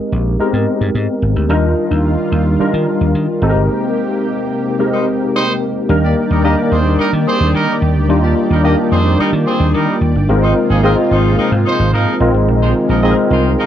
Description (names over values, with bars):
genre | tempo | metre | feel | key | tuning
pop | 109 BPM | 4/4 | straight | Eb major | A4 = 440 Hz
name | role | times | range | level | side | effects
tine electric piano | accompaniment | 0.0-13.7 s | G3 to Bb4 | -15 LUFS | left 1 dB | medium stereo tremolo, ensemble chorus
vintage slap bass | bass | 0.1-13.5 s | G1 to Eb3 | -15 LUFS | equal | none
lush unison pad | sustained chords | 1.5-13.7 s | C3 to D5 | -23 LUFS | right 2 dB | chorus
clear horn section | second line | 4.9-13.7 s | F3 to Eb5 | -19 LUFS | right 2 dB | none
room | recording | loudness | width
light reverb | dry, close 1970s-style studio recording | -12 LUFS | side -10 dB against mid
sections
0.0-5.9 A section; 5.9-13.7 B section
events
break 3.7-5.9; band accent 3.7-5.9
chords
0.0 Abmaj9; 1.5 Ebmaj9; 3.4 Abmaj9; 5.9 Ebmaj7; 10.3 Ab69